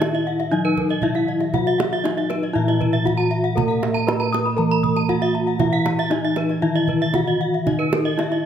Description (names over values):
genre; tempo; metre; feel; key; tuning
Balinese gamelan; 118 BPM; 4/4; straight; Eb pelog; A4 = 440 Hz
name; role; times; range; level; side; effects
gamelan-type bronze metallophone; melody; 0.0-8.5 s; Eb4 to Cb5-40c; -23 LUFS; left 1 dB; none
gamelan-type bronze metallophone; accompaniment; 0.0-8.5 s; Eb3 to Bb3-45c; -27 LUFS; right 3 dB; none
gamelan-type bronze metallophone; arpeggios; 0.0-8.3 s; Bb4-45c to Eb6; -28 LUFS; left 4 dB; none
gamelan-type bossed gongs; bass; 0.0-8.5 s; Bb2-45c to Bb4-45c; -25 LUFS; left 2 dB; none
kendang; percussion; 0.0-8.4 s; none; -27 LUFS; right 4 dB; none
gamelan-type bronze metallophone; arpeggios; 0.1-8.4 s; Cb5-40c to Cb6-40c; -27 LUFS; right 5 dB; none
room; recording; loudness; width
light reverb; close, detailed microphones; -18 LUFS; side -9 dB against mid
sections
0.0-8.5 A section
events
none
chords
none